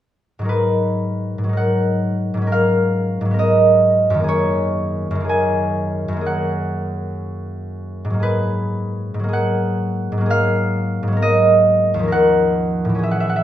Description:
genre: classical, solo harp piece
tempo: 51-71 BPM (dotted quarters)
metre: 6/8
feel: rubato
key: unclear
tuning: A4 = 442 Hz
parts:
  - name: concert harp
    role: solo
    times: 0.4-13.4 s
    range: D#2 to G#5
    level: -16 LUFS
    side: equal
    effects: none
room: wet recital hall reverb, RT60 1.3 s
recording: none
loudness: -16 LUFS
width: side -11 dB against mid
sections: 0.5-13.4 A section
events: none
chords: 0.5 G#m9; 2.5 F#add9/G#; 3.4 Bmaj7/G#; 4.3 F#69; 6.2 F#add9; 8.2 F#add9/G#; 11.2 Bmaj7/G#; 12.1 D#m9

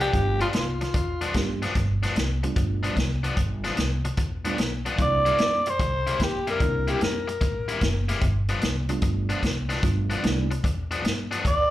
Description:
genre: electric blues shuffle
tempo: 148 BPM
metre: 4/4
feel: swing 68% on 8ths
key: G mixolydian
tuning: A4 = 442 Hz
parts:
  - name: growling tenor saxophone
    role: melody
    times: 0.0-1.6, 5.0-8.1, 11.5-11.7 s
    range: F4 to D5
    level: -25 LUFS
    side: equal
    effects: slapback echo
  - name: biting overdriven guitar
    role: riff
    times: 0.0-11.5 s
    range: G2 to E4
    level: -31 LUFS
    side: left 4 dB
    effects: slapback echo
  - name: vintage drum kit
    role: drums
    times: 0.0-11.6 s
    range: hi-hat, kick drum, snare drum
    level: -27 LUFS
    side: equal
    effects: none
  - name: mellow reed electric piano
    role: accompaniment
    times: 0.1-10.5 s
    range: G3 to G4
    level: -32 LUFS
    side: right 5 dB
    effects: slapback echo
  - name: upright bass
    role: bass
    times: 0.1-11.7 s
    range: F#1 to A2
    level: -28 LUFS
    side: equal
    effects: none
room: light reverb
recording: live gig heard through the venue's PA, club reverb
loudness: -22 LUFS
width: side -14 dB against mid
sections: 0.0-11.7 A section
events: none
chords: 0.0 G7; 5.0 C7; 8.2 G7

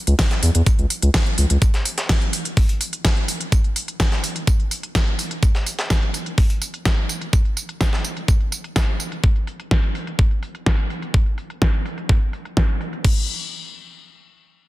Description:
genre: progressive house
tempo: 126 BPM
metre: 4/4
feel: straight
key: C# minor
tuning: A4 = 442 Hz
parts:
  - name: saturated sub bass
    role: bass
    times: 0.1-1.6 s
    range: C#2 to E2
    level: -15 LUFS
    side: equal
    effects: sidechain pumping
  - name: pop drum kit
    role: drums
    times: 0.1-13.1 s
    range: crash cymbal, hi-hat, snare drum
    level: -25 LUFS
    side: equal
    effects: sidechain pumping on hats, low-pass filter on hats, small room reverb, low-pass filter on snare, sidechain pumping on cymbals, low-pass filter on cymbals, sidechain pumping on toms, low-pass filter on toms
  - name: breakbeat sampler-style drum kit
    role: drums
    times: 0.2-9.1 s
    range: hi-hat, snare drum, tambourine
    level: -28 LUFS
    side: right 1 dB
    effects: high-pass filter on perc, small room reverb, high-pass filter on snare, high-pass filter on hats
  - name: electronic kick drum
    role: drums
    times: 0.2-13.1 s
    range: none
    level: -18 LUFS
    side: equal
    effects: small room reverb
room: light reverb, digital ambience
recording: dense, heavily limited modern master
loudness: -18 LUFS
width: side -17 dB against mid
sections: 0.0-13.0 A section; 13.0-14.7 B section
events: filter sweep on drum 0.0-13.0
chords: none

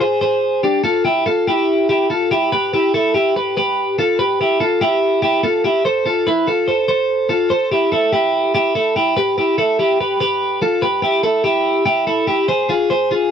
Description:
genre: indie pop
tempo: 144 BPM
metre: 4/4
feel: straight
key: unclear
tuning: A4 = 441 Hz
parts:
  - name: twelve-string electric guitar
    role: solo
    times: 0.0-13.3 s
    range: D4 to C5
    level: -14 LUFS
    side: equal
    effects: none
room: light reverb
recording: dry, close 1970s-style studio recording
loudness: -14 LUFS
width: side -8 dB against mid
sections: 0.0-5.9 A section; 5.9-13.3 B section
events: none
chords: 0.0 Fm (rootless); 0.6 G5; 2.5 Em; 4.0 G7(no3); 5.9 Am; 9.0 Em; 12.5 Fm

